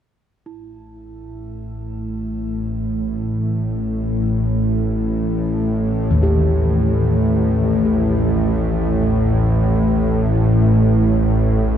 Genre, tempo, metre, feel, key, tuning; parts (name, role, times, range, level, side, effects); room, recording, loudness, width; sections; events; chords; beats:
dark ambient drone; free time; A4 = 440 Hz
bowed-like drone; drone; 1.3-11.8 s; A1 to A2; -17 LUFS; equal; built-in reverb
bronze singing bowl; texture; 0.5-11.8 s; E4; -39 LUFS; right 7 dB; stereo widening, shimmer reverb
gamelan-type bossed gongs; arpeggios; 6.1-11.8 s; D#2 to G4; -21 LUFS; left 1 dB; ping-pong delay
wet huge ambient reverb, RT60 7.1 s; -16 LUFS; side -9 dB against mid
0.5-11.8 A section
fade-in on singing bowl 0.5-11.8; filter sweep on synth drone 0.5-11.8
0.5 A5
free time